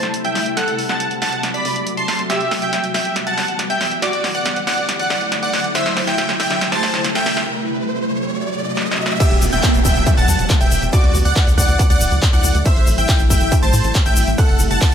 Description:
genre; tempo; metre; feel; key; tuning
uplifting trance; 139 BPM; 4/4; straight; E minor; A4 = 440 Hz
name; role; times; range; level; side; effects
supersaw chords; melody; 0.0-14.9 s; F#4 to C6; -21 LUFS; equal; sidechain pumping, low-pass filter, digital delay
plucky unison lead; second line; 0.0-14.9 s; D6 to C7; -26 LUFS; right 1 dB; sidechain pumping
shimmering ambient pad; sustained chords; 0.0-14.9 s; C3 to G4; -25 LUFS; left 1 dB; chorus, built-in reverb, sidechain pumping
tight sequencer bass; bass; 0.0-14.9 s; D1 to A2; -20 LUFS; equal; sidechain pumping, high-pass filter
punchy analog drum machine; drums; 0.0-14.9 s; crash cymbal, handclaps, hi-hat, snare drum; -23 LUFS; equal; high-pass filter on snare, sidechain pumping on hats, high-pass filter on hats, sidechain pumping on cymbals, high-pass filter on cymbals
riser and downlifter; sound effects; 4.8-12.7 s; none; -26 LUFS; right 1 dB; none
electronic kick drum; drums; 9.2-14.9 s; none; -15 LUFS; equal; distortion, overdrive
tube shaker; percussion; 9.2-14.9 s; none; -27 LUFS; left 4 dB; none
room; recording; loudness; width
light reverb, digital ambience; none; -14 LUFS; side -8 dB against mid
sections
0.0-9.2 A section; 9.2-14.9 B section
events
build-up 0.0-9.2; drum fill 0.0-7.5, 8.8-9.2; riser 4.8-9.2; break 7.5-9.2; drop 9.2-14.9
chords
0.0 Am7; 0.6 F#dim; 2.3 Em; 4.0 Dadd9; 5.8 Am7; 7.5 F#dim; 9.2 Em; 10.9 Dadd9; 12.7 Am7; 14.4 F#dim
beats
0.14 | 0.57 1.00 1.43 1.86 | 2.30 2.73 3.16 3.59 | 4.02 4.46 4.89 5.32 | 5.75 6.18 6.61 7.04 | 7.48 7.91 8.34 8.77 | 9.20 9.63 10.07 10.50 | 10.93 11.36 11.79 12.22 | 12.66 13.09 13.52 13.95 | 14.38 14.81

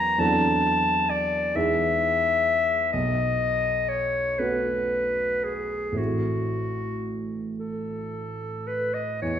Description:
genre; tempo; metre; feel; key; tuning
classical, impressionist duo for clarinet and grand piano; 36-45 BPM (dotted quarters); 6/8; rubato; unclear; A4 = 440 Hz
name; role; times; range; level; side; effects
clear clarinet; melody; 0.0-9.4 s; F#4 to A#5; -24 LUFS; left 2 dB; none
dark baby grand piano; accompaniment; 0.0-9.4 s; A1 to A#4; -28 LUFS; right 2 dB; none
room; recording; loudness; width
wet recital hall reverb, RT60 1.5 s; heard from further back in the room; -23 LUFS; side -9 dB against mid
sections
0.0-9.2 A section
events
none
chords
0.2 D9/E; 1.6 Emaj7; 2.9 B9; 6.0 Am6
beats
| 0.19 1.55 | 2.93 4.39 | 5.98 7.60 | 9.22

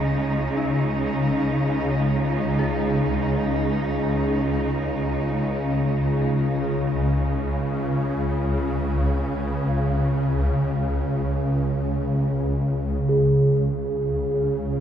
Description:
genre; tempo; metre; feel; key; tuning
dark ambient drone; free time; none; none; unclear; A4 = 440 Hz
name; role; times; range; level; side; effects
warm studio cello section; sustained chords; 0.0-13.1 s; C#3 to D#4; -27 LUFS; right 1 dB; none
dark detuned synth bell; arpeggios; 0.0-13.1 s; C#4 to G#4; -36 LUFS; left 3 dB; none
swarming drone; drone; 0.0-14.8 s; C#2 to C#3; -22 LUFS; equal; built-in reverb
bronze singing bowl; texture; 0.0-14.8 s; G#4; -23 LUFS; right 1 dB; none
room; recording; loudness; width
wet huge ambient reverb, RT60 8.0 s; dark, warm production; -21 LUFS; side -9 dB against mid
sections
0.0-13.1 A section; 13.1-14.8 B section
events
fade-out on cello section 0.0-13.1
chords
0.0 C#5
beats
free time

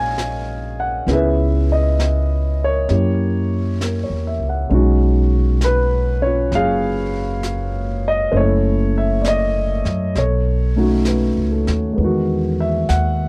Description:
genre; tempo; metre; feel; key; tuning
jazz ballad; 66 BPM; 4/4; swing 67% on 8ths; unclear; A4 = 439 Hz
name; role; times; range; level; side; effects
warm concert grand piano; accompaniment; 0.0-13.3 s; D#3 to Ab5; -22 LUFS; equal; none
upright bass; bass; 0.0-13.3 s; F#1 to Gb2; -21 LUFS; equal; none
jazz brush drum kit; drums; 0.2-13.3 s; brushed snare drum, hi-hat, snare drum; -34 LUFS; equal; none
room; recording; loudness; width
little or no reverb; dry, close 1970s-style studio recording; -18 LUFS; mono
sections
0.0-13.3 A section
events
none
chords
0.0 Ebm7; 1.1 Dbm9; 2.9 Gb7b9; 4.7 B69; 8.3 Gbm7; 10.2 B9; 12.0 Emaj7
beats
0.16 | 1.07 1.98 2.89 3.80 | 4.71 5.62 6.52 7.43 | 8.34 9.25 10.16 11.07 | 11.98 12.89

